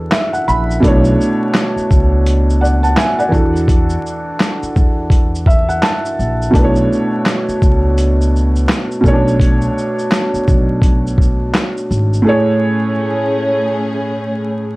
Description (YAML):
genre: lo-fi hip hop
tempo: 84 BPM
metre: 4/4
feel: swing 60% on 16ths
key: B dorian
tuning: A4 = 440 Hz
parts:
  - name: felt-muted upright piano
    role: accompaniment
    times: 0.0-14.8 s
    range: A2 to B5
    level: -16 LUFS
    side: right 1 dB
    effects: none
  - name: upright bass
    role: bass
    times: 0.0-12.2 s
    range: G#1 to E2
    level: -16 LUFS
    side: equal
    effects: none
  - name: boom bap sampler-style drum kit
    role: drums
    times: 0.1-12.3 s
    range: handclaps, hi-hat, kick drum, shaker, snare drum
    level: -14 LUFS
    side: equal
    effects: vintage 12-bit sampler grit
  - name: warm studio string section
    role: sustained chords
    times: 12.3-14.8 s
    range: A3 to G#4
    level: -20 LUFS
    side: left 1 dB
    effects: none
room: moderate studio reverb, RT60 0.6 s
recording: vinyl crackle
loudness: -12 LUFS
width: side -22 dB against mid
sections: 0.0-12.3 A section; 12.3-14.8 B section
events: break 0.0-0.8; felt piano fill 0.0-0.8, 5.1-6.5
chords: 0.0 E9sus4; 0.8 Bm11; 3.3 E9sus4; 6.5 Bm11; 9.0 Bm9; 12.3 Amaj7